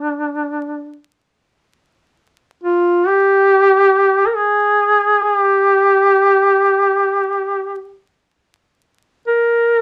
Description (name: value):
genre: caucasian folk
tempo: free time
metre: none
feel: none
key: G phrygian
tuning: A4 = 440 Hz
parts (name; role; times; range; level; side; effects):
- warm duduk; solo; 0.0-9.8 s; D4 to Bb4; -15 LUFS; equal; none
room: moderate studio ambience, RT60 0.4 s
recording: vinyl crackle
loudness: -15 LUFS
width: mono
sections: 0.0-8.5 A section; 8.5-9.8 A section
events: none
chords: none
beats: free time